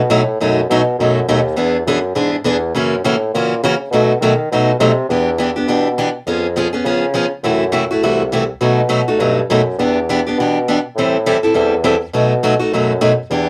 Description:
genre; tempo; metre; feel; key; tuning
acoustic string swing (jazz manouche); 205 BPM; 4/4; swing 59% on 8ths; E minor; A4 = 440 Hz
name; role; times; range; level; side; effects
mellow bassoon; bass; 0.0-13.5 s; C2 to D#3; -21 LUFS; equal; none
picked acoustic archtop guitar; accompaniment; 0.1-13.5 s; B2 to A4; -17 LUFS; equal; none
room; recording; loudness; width
light reverb; close, detailed microphones; -16 LUFS; mono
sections
0.0-5.1 A section; 5.1-13.5 B section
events
none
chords
0.0 B7; 1.6 E7; 2.7 F#7; 3.9 B7; 5.1 Em7; 6.3 C#7/E#; 7.4 F#m7b5; 8.6 B7; 9.8 Em7; 11.0 Am7; 12.1 B7

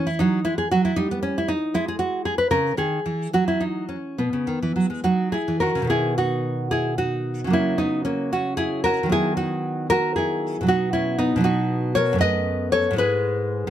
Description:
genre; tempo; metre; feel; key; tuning
classical, baroque-style dance for nylon-string guitar; 69-79 BPM (dotted quarters); 6/8; rubato; B major; A4 = 440 Hz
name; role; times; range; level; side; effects
nylon-string guitar; solo; 0.0-13.7 s; F#2 to D#5; -20 LUFS; equal; none
room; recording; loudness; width
light reverb; close, detailed microphones; -20 LUFS; side -11 dB against mid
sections
0.0-5.9 A section; 5.9-13.7 B section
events
none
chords
0.2 Emaj9/F#; 1.0 N.C.; 2.5 C#m; 3.4 N.C.; 4.2 B; 7.5 F#7/C#; 9.1 B/D#; 10.7 B; 12.2 B7/F#; 13.0 E/G#

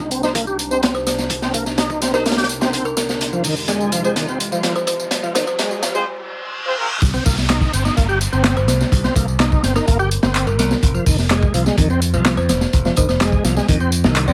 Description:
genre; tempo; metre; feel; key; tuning
breakbeat, breaks; 126 BPM; 4/4; straight; unclear; A4 = 435 Hz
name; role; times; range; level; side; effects
warbly tape-like pad; sustained chords; 0.0-6.0 s; C2 to F4; -31 LUFS; equal; chorus, built-in reverb, sidechain pumping
overdriven tonewheel organ; riff; 0.0-14.3 s; Eb3 to G4; -24 LUFS; equal; chorus vibrato, slow rotary speaker, low-pass filter, tape echo
riser, reverse cymbal and downlifter; sound effects; 2.8-10.8 s; none; -32 LUFS; equal; none
crunchy breakbeat drum kit; drums; 0.1-14.3 s; hi-hat, kick drum, snare drum; -21 LUFS; equal; high-pass filter on kick, high-pass filter on hats, high-pass filter on snare, high-pass filter on room
electronic tambourine and handclaps; drums; 0.1-14.3 s; none; -28 LUFS; equal; overdrive, high-pass filter on perc, high-pass filter on snare
warm brass ensemble; stabs; 0.2-6.9 s; C4 to C5; -25 LUFS; equal; vintage 12-bit sampler grit, tape echo
kalimba; melody; 0.9-5.5, 8.6-14.3 s; Bb4 to D5; -28 LUFS; equal; small speaker sound, vintage 12-bit sampler grit, tape echo
modern bright picked electric bass; bass; 7.0-14.3 s; F1 to F2; -21 LUFS; equal; tube saturation
room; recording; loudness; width
light reverb; vinyl crackle, high-pass filter; -18 LUFS; mono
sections
0.0-7.0 A section; 7.0-14.3 B section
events
build-up 0.0-7.0; filter sweep on tonewheel organ 0.0-7.0; drum fill 3.2-6.1; break 6.1-7.0; reverse cymbal 6.1-7.0; drop 7.0-14.3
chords
0.0 Cmadd9; 3.2 Fm; 7.0 Cm; 10.8 Fm

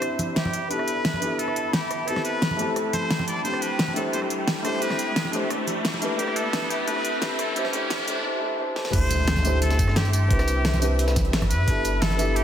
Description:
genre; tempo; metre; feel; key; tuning
liquid drum and bass; 175 BPM; 4/4; straight; G major; A4 = 436 Hz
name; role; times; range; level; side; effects
trumpet with straight mute; melody; 0.0-12.4 s; G4 to D5; -29 LUFS; equal; low-pass filter, digital delay
felt-muted upright piano; accompaniment; 0.0-12.4 s; A3 to C5; -28 LUFS; left 1 dB; low-pass filter, digital delay
ethereal airy pad; sustained chords; 0.0-12.4 s; D5 to D6; -32 LUFS; right 1 dB; ensemble chorus, built-in reverb, tremolo, sidechain pumping
warm sub bass; bass; 0.0-12.4 s; G1 to G2; -23 LUFS; equal; high-pass filter
pop drum kit; drums; 0.0-12.4 s; crash cymbal, hi-hat, rim click, snare drum, tambourine; -28 LUFS; equal; studio reverb
riser and impact; sound effects; 0.7-10.3 s; none; -33 LUFS; equal; none
congas; percussion; 0.2-12.2 s; none; -32 LUFS; right 1 dB; none
breakbeat sampler-style drum kit; drums; 8.9-12.4 s; hi-hat, snare drum; -34 LUFS; left 1 dB; high-pass filter on hats, studio reverb, high-pass filter on snare
electronic kick drum; drums; 8.9-11.7 s; none; -24 LUFS; equal; studio reverb
room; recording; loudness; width
moderate lush hall reverb, RT60 2.0 s; dense, heavily limited modern master, high-pass filter; -21 LUFS; side -9 dB against mid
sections
0.0-8.9 A section; 8.9-12.4 B section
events
build-up 0.0-8.9; filter sweep on ambient pad 0.0-8.9; riser 0.7-8.2; drum fill 8.8; drop 8.9-12.4; impact 8.9-10.3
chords
0.0 Cmaj9; 0.5 G6; 2.1 Am9; 3.4 D9sus4; 4.8 Cmaj9; 6.0 G6; 7.6 Am9; 8.9 D9sus4; 10.3 Cmaj9; 11.5 G6

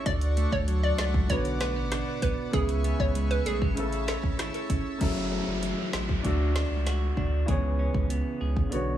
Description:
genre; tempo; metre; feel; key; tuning
dancehall; 97 BPM; 4/4; straight; C# phrygian; A4 = 438 Hz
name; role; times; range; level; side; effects
warm grand piano; accompaniment; 0.0-9.0 s; C#3 to D5; -34 LUFS; left 2 dB; none
pipe organ, strings celeste; sustained chords; 0.0-5.0 s; A4 to E6; -38 LUFS; right 1 dB; sidechain pumping
clean electric guitar; arpeggios; 0.0-9.0 s; F#2 to G#4; -34 LUFS; right 2 dB; none
hollow square pluck; melody; 0.1-4.2 s; G#4 to D5; -33 LUFS; right 1 dB; chorus, digital delay
saturated sub bass; bass; 0.1-9.0 s; F#1 to D2; -29 LUFS; right 1 dB; none
afro-pop drum kit; drums; 0.1-8.9 s; crash cymbal, hi-hat, kick drum, rim click, snare drum; -30 LUFS; equal; none
downlifter; sound effects; 5.0-9.0 s; none; -37 LUFS; right 1 dB; none
room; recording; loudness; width
digital ambience; small room ambience; -25 LUFS; side -11 dB against mid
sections
0.0-5.0 A section; 5.0-9.0 B section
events
grand piano fill 8.7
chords
0.1 Dmaj7; 1.3 Bm; 2.5 C#m7; 3.8 A; 5.0 F#m7; 6.2 D; 7.5 C#m7

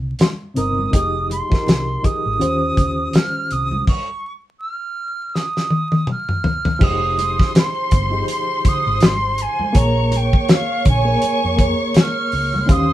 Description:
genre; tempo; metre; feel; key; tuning
lush 1970s-style soul; 82 BPM; 4/4; swing 58% on 16ths; F minor; A4 = 440 Hz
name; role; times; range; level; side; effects
hollow-body short-scale fingered electric bass; bass; 0.0-12.9 s; F1 to F2; -22 LUFS; equal; none
silver concert flute; melody; 0.2-12.9 s; F5 to F6; -22 LUFS; right 2 dB; none
damped 70s drum kit; drums; 0.2-12.9 s; crash cymbal, hi-hat, kick drum, snare drum, toms; -16 LUFS; equal; none
congas; percussion; 0.2-12.9 s; none; -30 LUFS; right 1 dB; none
reed electric piano; accompaniment; 0.5-12.9 s; C3 to F5; -24 LUFS; left 1 dB; fast tremolo
dark studio string section; second line; 6.8-12.9 s; C5 to Db6; -24 LUFS; right 2 dB; none
room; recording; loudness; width
moderate studio ambience, RT60 0.5 s; band playing live in one room, vinyl crackle; -16 LUFS; side -14 dB against mid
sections
0.0-6.8 A section; 6.8-12.9 B section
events
stop 3.9-6.8; drum fill 5.3-6.8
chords
0.0 Cm7; 0.9 Fm9; 2.4 Eb13; 3.9 N.C.; 6.8 Fm9; 9.8 Bbm7

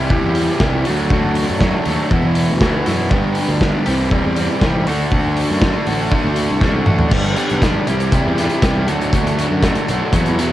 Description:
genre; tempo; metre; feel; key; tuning
indie rock; 120 BPM; 4/4; straight; unclear; A4 = 443 Hz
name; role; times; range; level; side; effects
fuzz guitar; riff; 0.0-10.5 s; E2 to G4; -18 LUFS; equal; distortion, cassette tape
fuzz picked electric bass; bass; 0.0-10.5 s; G1 to G2; -20 LUFS; equal; overdrive
loose indie drum kit; drums; 0.1-10.5 s; crash cymbal, hi-hat, kick drum, snare drum, toms; -18 LUFS; equal; cassette tape
room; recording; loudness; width
little or no reverb; home recording on cassette; -14 LUFS; side -14 dB against mid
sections
0.0-7.1 A section; 7.1-10.5 B section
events
drum fill 6.6-7.1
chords
0.0 C; 0.9 D; 2.1 Esus2; 3.1 G; 3.9 C; 4.9 D; 7.1 G; 7.9 C; 8.9 D

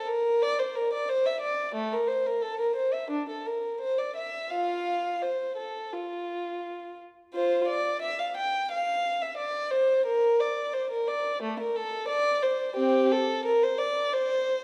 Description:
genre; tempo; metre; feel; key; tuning
classical, baroque-style suite movement for unaccompanied violin; 88 BPM; 4/4; rubato; F major; A4 = 440 Hz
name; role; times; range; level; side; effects
dark violin; solo; 0.0-14.6 s; A3 to G5; -28 LUFS; equal; none
room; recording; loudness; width
wet recital hall reverb, RT60 1.5 s; none; -28 LUFS; mono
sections
0.0-7.3 A section; 7.3-14.6 B section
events
none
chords
none

